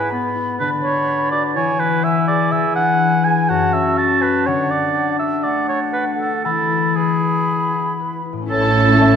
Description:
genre	classical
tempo	115-126 BPM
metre	4/4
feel	rubato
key	unclear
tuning	A4 = 440 Hz
part	clear clarinet	second line	0.0-9.2 s	B3 to A4	-25 LUFS	equal	none
part	mellow silver concert flute	second line	0.0-9.2 s	C#5 to B5	-23 LUFS	equal	none
part	warm oboe	second line	0.0-9.2 s	G#4 to A5	-19 LUFS	right 3 dB	none
part	concert harp	arpeggios	0.0-9.2 s	F#2 to B4	-21 LUFS	left 9 dB	none
part	rich studio violin section	melody	8.5-9.2 s	A5	-22 LUFS	left 3 dB	none
part	rich symphonic violin section	second line	8.5-9.2 s	A4	-24 LUFS	equal	none
part	rich symphonic viola section	accompaniment	8.5-9.2 s	C#4 to E4	-20 LUFS	right 1 dB	none
part	mellow French horn section	sustained chords	8.5-9.2 s	A3 to C#4	-19 LUFS	left 1 dB	none
part	clear symphonic double bass section	bass	8.5-9.2 s	A1	-18 LUFS	right 4 dB	none
part	rich symphonic cello section	bass	8.5-9.2 s	A2	-22 LUFS	right 4 dB	none
room	wet scoring stage reverb, RT60 1.6 s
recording	none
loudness	-15 LUFS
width	side -7 dB against mid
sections	0.0-8.5 A section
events	none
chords	0.0 E/G#; 0.6 Bm/D; 1.6 E; 2.5 E9; 3.5 F#m; 4.5 D; 6.5 E; 8.5 A

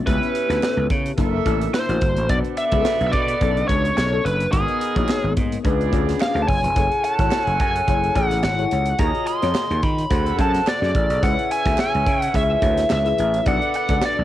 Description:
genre	polished 1980s jazz-funk pop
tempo	108 BPM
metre	4/4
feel	swing 54% on 16ths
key	unclear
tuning	A4 = 440 Hz
part	bell-like FM electric piano	accompaniment	0.0-14.2 s	A#3 to E5	-26 LUFS	left 8 dB	phaser, ensemble chorus, cassette tape
part	biting lead guitar	melody	0.1-14.2 s	G#4 to C6	-22 LUFS	equal	overdrive, cassette tape
part	clear horn section	second line	0.1-14.2 s	A#3 to F#5	-30 LUFS	right 11 dB	cassette tape
part	gritty slap bass	bass	0.1-14.2 s	E#1 to D#3	-23 LUFS	right 1 dB	overdrive
part	crisp fusion drum kit	drums	0.1-14.2 s	hi-hat, kick drum, snare drum	-24 LUFS	right 1 dB	cassette tape
part	group handclap	percussion	0.6-14.2 s	none	-38 LUFS	right 13 dB	none
room	light reverb, studio ambience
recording	home recording on cassette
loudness	-18 LUFS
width	side -13 dB against mid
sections	0.0-14.2 A section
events	none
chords	0.1 C#m7b5; 1.2 F#7alt; 2.3 Bm7; 4.5 G#m9; 5.6 C#7b9; 6.8 F#m9; 9.0 D#m11; 10.1 D7#11; 11.2 C#m7; 13.5 Bm7

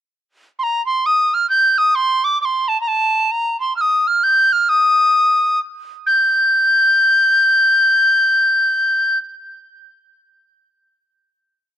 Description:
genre	celtic folk, Celtic waltz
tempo	132 BPM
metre	3/4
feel	swing 62% on 8ths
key	unclear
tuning	A4 = 440 Hz
part	bright wooden whistle	solo	0.6-9.2 s	A5 to G6	-13 LUFS	equal	none
room	small room ambience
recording	dry, close 1970s-style studio recording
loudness	-13 LUFS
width	side -10 dB against mid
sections	0.6-6.0 A section; 6.0-8.8 final note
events	none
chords	none

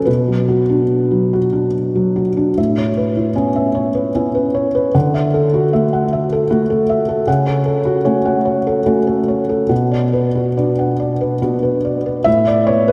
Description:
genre	neoclassical minimalist piano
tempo	69-78 BPM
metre	3/4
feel	rubato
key	A major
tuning	A4 = 440 Hz
part	felt-muted upright piano	solo	0.0-12.9 s	A2 to F#5	-16 LUFS	equal	tape echo
room	wet lush hall reverb, RT60 3.1 s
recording	dreamy mix soaked in reverb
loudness	-16 LUFS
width	mono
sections	0.0-2.6 A section; 2.6-12.3 B section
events	none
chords	0.1 Bm; 2.6 Aadd9; 4.9 Dadd9; 7.3 F#m/C#; 9.7 Bm; 12.3 Asus2

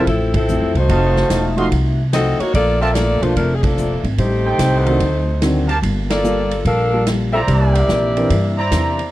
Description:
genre	jazz, big band swing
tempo	146 BPM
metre	4/4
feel	swing 66% on 8ths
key	F major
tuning	A4 = 440 Hz
part	clear saxophone section	melody	0.0-8.7 s	F3 to F5	-19 LUFS	left 1 dB	none
part	warm concert grand piano	accompaniment	0.0-8.3 s	Eb3 to Bb4	-21 LUFS	right 1 dB	none
part	clear trumpet section	stabs	0.0-9.1 s	Eb4 to C6	-22 LUFS	right 3 dB	none
part	upright bass	bass	0.0-9.1 s	E1 to G2	-18 LUFS	equal	none
part	fingerpicked steel-string acoustic guitar	accompaniment	0.1-9.0 s	F2 to A4	-25 LUFS	left 3 dB	none
part	swinging big-band drum kit	drums	0.1-9.1 s	hi-hat, kick drum, ride cymbal, snare drum	-25 LUFS	right 1 dB	none
room	studio ambience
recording	dry, close 1970s-style studio recording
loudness	-14 LUFS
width	side -15 dB against mid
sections	0.0-9.1 A section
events	band accent 0.3, 3.6, 6.0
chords	0.0 Fmaj7; 0.9 F7b9; 2.5 Bbmaj7; 4.2 Am7b5; 5.0 D7b9; 5.8 Gm9; 7.5 C9

